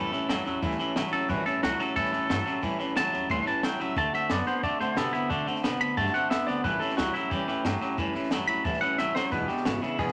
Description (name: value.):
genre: rockabilly.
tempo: 180 BPM.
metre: 4/4.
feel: straight.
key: A mixolydian.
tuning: A4 = 440 Hz.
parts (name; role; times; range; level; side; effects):
twangy electric guitar; melody; 0.0-10.1 s; D4 to C6; -32 LUFS; equal; none.
picked steel-string acoustic guitar; accompaniment; 0.0-10.1 s; E2 to F#4; -36 LUFS; equal; none.
twangy electric guitar; riff; 0.0-10.1 s; E2 to B3; -33 LUFS; equal; none.
upright bass; bass; 0.0-10.1 s; E1 to C3; -40 LUFS; equal; none.
compact cocktail drum kit; drums; 0.1-10.1 s; hi-hat, kick drum, snare drum; -36 LUFS; equal; none.
room: moderate studio reverb, RT60 0.6 s.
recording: none.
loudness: -28 LUFS.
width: mono.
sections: 0.0-10.1 A section.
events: clean electric guitar solo 0.0-10.1; drum fill 9.0-9.3.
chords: 0.0 A7; 4.0 D7; 6.6 A7; 9.3 E7.